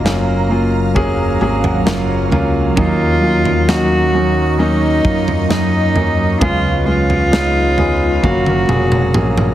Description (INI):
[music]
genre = pop ballad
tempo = 66 BPM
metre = 4/4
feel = straight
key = F# major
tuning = A4 = 440 Hz
[part]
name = dark cello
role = melody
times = 0.0-9.5 s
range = A#3 to F#4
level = -18 LUFS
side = equal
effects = none
[part]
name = warm concert grand piano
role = accompaniment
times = 0.0-9.5 s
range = C#3 to G#5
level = -18 LUFS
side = equal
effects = none
[part]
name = ethereal airy pad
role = sustained chords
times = 0.0-9.5 s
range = F#3 to C#6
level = -23 LUFS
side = right 2 dB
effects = ensemble chorus, built-in reverb, phaser
[part]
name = modern bright fingered electric bass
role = bass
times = 0.0-9.5 s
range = E#1 to F#2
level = -18 LUFS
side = equal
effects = none
[part]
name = modern studio drum kit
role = drums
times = 0.1-9.5 s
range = kick drum, snare drum, toms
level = -19 LUFS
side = equal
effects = none
[sound]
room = light reverb, small room ambience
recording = heavily compressed radio sound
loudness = -12 LUFS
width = side -12 dB against mid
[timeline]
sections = 0.0-9.5 A section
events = grand piano fill 1.0-2.8; drum fill 8.2-9.5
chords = 0.0 F#maj7; 2.8 D#m7; 6.4 C#7; 8.2 F#maj7